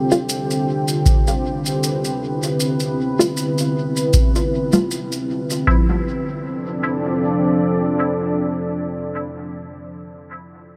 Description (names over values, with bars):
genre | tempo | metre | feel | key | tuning
ambient dub | 78 BPM | 4/4 | swing 55% on 16ths | D dorian | A4 = 441 Hz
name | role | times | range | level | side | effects
deep dark ambient pad | sustained chords | 0.0-9.5 s | D3 to G5 | -23 LUFS | equal | chorus, built-in reverb
filtered dub chord stab | stabs | 0.1-10.2 s | F3 to F4 | -24 LUFS | equal | phaser, dub echo
shaker | drums | 0.1-5.6 s | none | -29 LUFS | equal | dub echo
electronic kick drum | drums | 1.1-5.8 s | none | -19 LUFS | equal | none
room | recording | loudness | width
moderate huge ambient reverb, RT60 6.2 s | none | -20 LUFS | mono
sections
0.0-5.7 A section; 5.7-8.8 B section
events
filter sweep on synth stab 0.0-5.7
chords
0.0 Fadd9/D; 5.7 Dm7